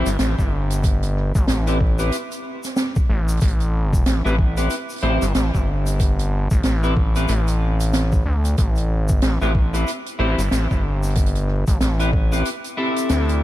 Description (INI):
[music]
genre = glitch hop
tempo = 93 BPM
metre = 4/4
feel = swing 59% on 16ths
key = A minor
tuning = A4 = 440 Hz
[part]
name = clean electric guitar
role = stabs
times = 0.0-13.4 s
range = C4 to C5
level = -26 LUFS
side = left 1 dB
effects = wide subtle chorus, sidechain pumping, tape echo
[part]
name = gritty driven synth bass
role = bass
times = 0.0-13.4 s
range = G1 to D2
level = -20 LUFS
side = equal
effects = none
[part]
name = open jazz drum kit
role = drums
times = 0.1-13.4 s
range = hi-hat, rim click, snare drum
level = -27 LUFS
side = right 1 dB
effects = none
[part]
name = egg shaker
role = percussion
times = 0.1-13.4 s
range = none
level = -38 LUFS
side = left 3 dB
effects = none
[part]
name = electronic kick drum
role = drums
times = 0.4-12.3 s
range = none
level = -19 LUFS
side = equal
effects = overdrive
[sound]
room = small room ambience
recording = vinyl crackle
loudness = -17 LUFS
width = side -15 dB against mid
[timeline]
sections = 0.0-13.4 A section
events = kick drops out 12.5-13.4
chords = 0.0 Am7